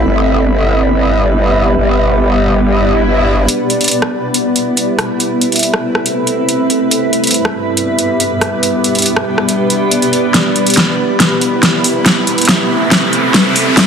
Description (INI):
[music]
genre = heavy wobble dubstep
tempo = 140 BPM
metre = 4/4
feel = half-time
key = unclear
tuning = A4 = 441 Hz
[part]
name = evolving wavetable pad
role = sustained chords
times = 0.0-13.9 s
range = G3 to B4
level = -17 LUFS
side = right 1 dB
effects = chorus, built-in reverb
[part]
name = growl bass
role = bass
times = 0.0-3.5 s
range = G1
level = -12 LUFS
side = equal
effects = chorus, overdrive
[part]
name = granular cloud pad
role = texture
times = 0.0-13.9 s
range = G2 to B5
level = -16 LUFS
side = equal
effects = built-in reverb
[part]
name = swell and riser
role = sound effects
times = 2.8-3.5, 11.5-13.9 s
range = none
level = -19 LUFS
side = equal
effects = none
[part]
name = big-room dance drum kit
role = drums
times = 3.5-13.9 s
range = hi-hat, rim click, snare drum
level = -13 LUFS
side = equal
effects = overdrive, small room ambience
[sound]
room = light reverb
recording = dense, heavily limited modern master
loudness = -10 LUFS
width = side -7 dB against mid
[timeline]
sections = 0.0-3.5 A section; 3.5-13.9 B section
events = swell 2.8-3.5; build-up 3.5-13.9; drum fill 10.3-13.9; riser 11.5-13.9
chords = 0.1 Em/G; 1.8 G; 5.2 Amadd9; 6.9 Em/G; 8.6 G; 12.1 Amadd9